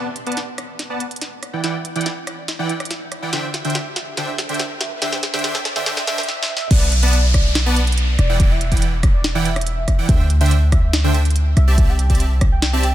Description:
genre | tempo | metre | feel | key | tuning
future bass | 142 BPM | 4/4 | half-time | E minor | A4 = 439 Hz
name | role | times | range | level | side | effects
warm velvety synth lead | melody | 0.0-12.9 s | D5 to G5 | -30 LUFS | right 1 dB | chorus, sidechain pumping, dub echo
big bright polysynth | riff | 0.0-12.9 s | D3 to A5 | -24 LUFS | right 2 dB | sidechain pumping
riser and downlifter | sound effects | 1.3-10.1 s | none | -28 LUFS | equal | none
trap drum kit | drums | 0.2-12.9 s | crash cymbal, hi-hat, rim click, snare drum | -24 LUFS | right 1 dB | high-pass filter on snare, studio reverb, high-pass filter on toms, high-pass filter on hats, high-pass filter on cymbals
warm 808-style bass | bass | 6.7-12.9 s | E1 to D2 | -16 LUFS | equal | sidechain pumping
electronic kick drum | drums | 6.7-12.5 s | none | -15 LUFS | equal | studio reverb
room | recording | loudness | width
little or no reverb | high-pass filter | -16 LUFS | side -13 dB against mid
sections
0.0-6.7 A section; 6.7-12.9 B section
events
build-up 0.0-6.7; drum fill 0.0-6.3, 6.3-6.7; filter sweep on analog polysynth 0.0-6.7; filter sweep on soft synth lead 0.0-6.7; filter sweep 0.0-6.7; riser 1.3-6.3; drop 6.7-12.9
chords
0.0 Bm7; 1.4 Em7; 3.3 D9sus4; 6.7 Bm7; 8.2 Em7; 10.1 D9sus4; 11.6 C6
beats
0.37 0.79 1.22 | 1.64 2.06 2.48 2.91 | 3.33 3.75 4.17 4.60 | 5.02 5.44 5.86 6.29 | 6.71 7.13 7.55 7.98 | 8.40 8.82 9.24 9.67 | 10.09 10.51 10.93 11.36 | 11.78 12.20 12.62

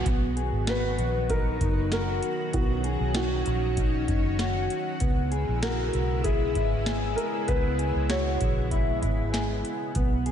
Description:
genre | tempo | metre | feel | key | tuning
dream pop | 97 BPM | 4/4 | straight | B major | A4 = 441 Hz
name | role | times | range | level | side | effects
string machine, full ensemble | sustained chords | 0.0-10.3 s | C#3 to F#4 | -32 LUFS | right 1 dB | ensemble chorus
mellow electric guitar | arpeggios | 0.0-10.3 s | B3 to G#4 | -32 LUFS | left 2 dB | wide subtle chorus, diffuse ambient delay
vintage muted fingered electric bass | bass | 0.0-10.3 s | F#1 to C#2 | -29 LUFS | equal | none
booming analog drum machine | drums | 0.1-10.3 s | hi-hat, kick drum, snare drum | -29 LUFS | equal | none
felt-muted upright piano | melody | 0.7-9.0 s | F#4 to C#5 | -31 LUFS | left 1 dB | diffuse ambient delay
room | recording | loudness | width
moderate lush hall reverb, RT60 1.8 s | dreamy mix soaked in reverb, nothing above 10.5 kHz | -24 LUFS | side -9 dB against mid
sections
0.1-10.3 A section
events
none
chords
0.1 Bmaj7; 5.0 C#m7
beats
| 0.06 0.68 1.29 1.91 | 2.53 3.15 3.77 4.39 | 5.00 5.62 6.24 6.86 | 7.48 8.10 8.72 9.34 | 9.95

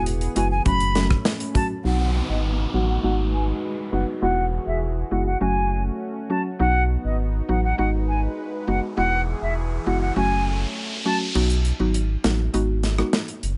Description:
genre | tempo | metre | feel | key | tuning
dancehall | 101 BPM | 4/4 | straight | unclear | A4 = 441 Hz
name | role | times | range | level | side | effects
jazz flute | melody | 0.0-11.2 s | D#5 to B5 | -29 LUFS | equal | low-pass filter, delay
mallet-like synth pluck | accompaniment | 0.0-13.2 s | F#3 to F#4 | -29 LUFS | equal | chorus, low-pass filter
warm analog pad | sustained chords | 0.0-11.3 s | E3 to B4 | -34 LUFS | equal | chorus, sidechain pumping, low-pass filter
sub bass with octave | bass | 0.0-13.6 s | E1 to B1 | -26 LUFS | equal | none
modern studio drum kit | drums | 0.1-1.7, 11.4-13.6 s | crash cymbal, hi-hat, kick drum, rim click, snare drum | -27 LUFS | equal | none
downlifter and riser | sound effects | 1.8-11.4 s | none | -36 LUFS | equal | none
room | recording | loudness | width
studio ambience | nothing above 10.9 kHz | -23 LUFS | mono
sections
0.0-1.8 A section; 1.8-11.4 B section; 11.4-13.6 C section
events
filter sweep 1.8-11.4; riser 8.1-11.4; kick muted 11.4-13.6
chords
0.0 Eadd9; 0.7 F#m; 1.8 B; 3.0 G#m7; 4.2 Eadd9; 5.4 F#m; 6.6 B; 7.8 G#m7; 9.0 Eadd9; 10.2 F#m; 11.4 B; 12.5 G#m7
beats
0.06 0.66 1.25 | 1.85 2.44 3.03 3.63 | 4.22 4.82 5.41 6.00 | 6.60 7.19 7.79 8.38 | 8.97 9.57 10.16 10.76 | 11.35 11.95 12.54 13.13

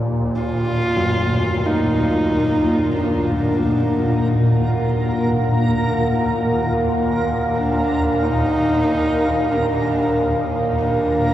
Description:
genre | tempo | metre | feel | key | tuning
ambient | 46 BPM | 4/4 | straight | Eb harmonic minor | A4 = 440 Hz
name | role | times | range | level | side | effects
dark analog pad | sustained chords | 0.0-11.3 s | Bb3 to Gb5 | -24 LUFS | right 1 dB | chorus, shimmer reverb
swarming drone | drone | 0.0-11.3 s | Eb2 to Bb2 | -20 LUFS | equal | built-in reverb
warm horsehead fiddle | melody | 0.4-11.3 s | Cb4 to F4 | -22 LUFS | equal | shimmer reverb, diffuse ambient delay
backwards swelling texture | texture | 1.6-11.3 s | Bb4 | -27 LUFS | right 1 dB | built-in reverb, shimmer reverb
old church bells | arpeggios | 1.0-8.8 s | Gb3 | -29 LUFS | equal | diffuse ambient delay
room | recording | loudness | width
wet huge ambient reverb, RT60 8.4 s | worn, warbling old tape, cassette tape, warbly pitch drift | -16 LUFS | side -12 dB against mid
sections
0.0-11.3 A section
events
none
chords
0.4 Ebmadd9; 10.8 Bb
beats
| 0.36 1.67 2.97 4.28 | 5.58 6.88 8.19 9.49 | 10.80

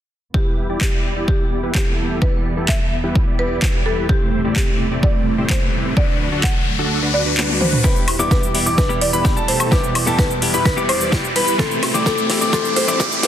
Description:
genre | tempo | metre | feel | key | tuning
EDM, festival progressive house | 128 BPM | 4/4 | straight | E minor | A4 = 440 Hz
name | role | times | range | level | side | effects
buzzing marimba with medium mallets | melody | 0.3-13.3 s | G4 to F#5 | -24 LUFS | equal | dub echo
warm studio string section | sustained chords | 0.3-13.3 s | D2 to B3 | -27 LUFS | right 2 dB | sidechain pumping, low-pass filter
dense compressed supersaw | riff | 0.3-13.3 s | A3 to D5 | -24 LUFS | equal | sidechain pumping, low-pass filter
electronic kick drum | drums | 0.3-13.1 s | none | -19 LUFS | equal | overdrive
house drum kit | drums | 0.8-13.3 s | handclaps, hi-hat, shaker, snare drum, toms, woodblock | -23 LUFS | equal | overdrive
riser | sound effects | 5.2-13.3 s | none | -25 LUFS | left 2 dB | none
direct-recorded clean electric guitar | accompaniment | 7.8-13.3 s | E3 to G4 | -26 LUFS | left 4 dB | sidechain pumping
clear grand piano | arpeggios | 7.8-13.3 s | A5 to D6 | -23 LUFS | left 2 dB | sidechain pumping, low-pass filter, dub echo
room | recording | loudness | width
moderate lush hall reverb, RT60 1.9 s, digital ambience | dense, heavily limited modern master, high-pass filter | -15 LUFS | side -10 dB against mid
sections
0.3-7.8 A section; 7.8-13.3 B section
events
filter sweep on string section 0.3-7.8; riser 5.2-7.8, 7.8-13.3; kick drops out 6.9-7.8; drum fill 7.4-7.8, 7.8-13.3; build-up 7.8-13.3; filter sweep on supersaw synth 7.8-13.3; filter sweep 7.8-13.3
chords
0.3 Em; 4.1 Am7/E; 6.0 D; 7.8 Em; 11.6 Am7/E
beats
| 0.34 0.81 1.28 1.75 | 2.22 2.69 3.15 3.62 | 4.09 4.56 5.03 5.50 | 5.97 6.44 6.91 7.37 | 7.84 8.31 8.78 9.25 | 9.72 10.19 10.65 11.12 | 11.59 12.06 12.53 13.00

